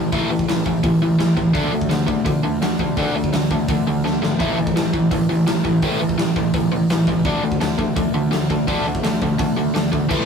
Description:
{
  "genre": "punk rock",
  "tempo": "168 BPM",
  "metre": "4/4",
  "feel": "straight",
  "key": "unclear",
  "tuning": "A4 = 441 Hz",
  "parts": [
    { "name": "biting overdriven guitar", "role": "riff", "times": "0.0-10.3 s", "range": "A2 to D4", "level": "-18 LUFS", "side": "equal", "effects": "none" },
    { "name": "fuzz picked electric bass", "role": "bass", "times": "0.0-10.2 s", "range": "G#1 to D2", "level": "-27 LUFS", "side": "equal", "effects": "overdrive" },
    { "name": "big rock drum kit", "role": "drums", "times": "0.1-10.2 s", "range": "crash cymbal, hi-hat, kick drum, snare drum", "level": "-23 LUFS", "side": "equal", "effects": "none" }
  ],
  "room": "light reverb",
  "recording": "rough rehearsal-room recording, warm saturation",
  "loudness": "-17 LUFS",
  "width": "side -6 dB against mid",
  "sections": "0.0-10.1 A section",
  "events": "drum fill 4.0-4.4",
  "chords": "0.0 A5; 1.5 D5; 4.4 A5; 7.3 D5"
}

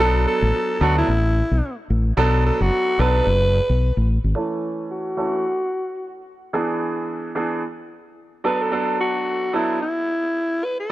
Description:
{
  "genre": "afrobeats",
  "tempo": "110 BPM",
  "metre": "4/4",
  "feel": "swing 58% on 16ths",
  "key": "B dorian",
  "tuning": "A4 = 444 Hz",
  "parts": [
    { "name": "breathy alto saxophone", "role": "melody", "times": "0.0-10.9 s", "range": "E4 to B4", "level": "-22 LUFS", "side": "equal", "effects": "low-pass filter" },
    { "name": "bright baby grand piano", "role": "accompaniment", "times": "0.0-10.9 s", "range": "E3 to A4", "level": "-23 LUFS", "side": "right 3 dB", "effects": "low-pass filter" },
    { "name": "fingered electric bass", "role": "bass", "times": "0.0-4.3 s", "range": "F#1 to D2", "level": "-18 LUFS", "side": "equal", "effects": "none" }
  ],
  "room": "light reverb, small room ambience",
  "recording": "dry, gritty hardware recording",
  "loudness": "-19 LUFS",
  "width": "side -16 dB against mid",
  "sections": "0.0-4.4 A section; 4.4-10.9 B section",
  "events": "filter sweep 4.4-10.9",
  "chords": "0.0 Bm7; 4.4 A; 6.5 E7; 8.4 Bm7"
}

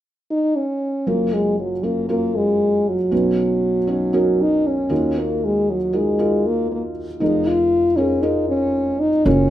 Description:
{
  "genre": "pop",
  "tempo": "117 BPM",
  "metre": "4/4",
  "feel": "straight",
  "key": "F# major",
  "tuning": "A4 = 435 Hz",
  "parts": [
    { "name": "dark French horn", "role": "melody", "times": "0.3-9.5 s", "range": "F#3 to E#4", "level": "-18 LUFS", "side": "equal", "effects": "none" },
    { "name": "felt-muted upright piano", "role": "accompaniment", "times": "1.1-9.5 s", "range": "E#1 to C#5", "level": "-22 LUFS", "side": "right 1 dB", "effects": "none" },
    { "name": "upright bass", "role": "bass", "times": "9.3-9.5 s", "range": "F#1", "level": "-16 LUFS", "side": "equal", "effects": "none" }
  ],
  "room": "wet studio reverb, RT60 0.5 s",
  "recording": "rough home demo mix",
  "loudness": "-17 LUFS",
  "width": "side -12 dB against mid",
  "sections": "0.0-1.1 A section; 1.1-9.3 B section",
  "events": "none",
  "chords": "0.0 N.C.; 1.1 F#maj7; 3.1 Badd9; 4.9 D#madd9; 7.2 A#7sus4/E#"
}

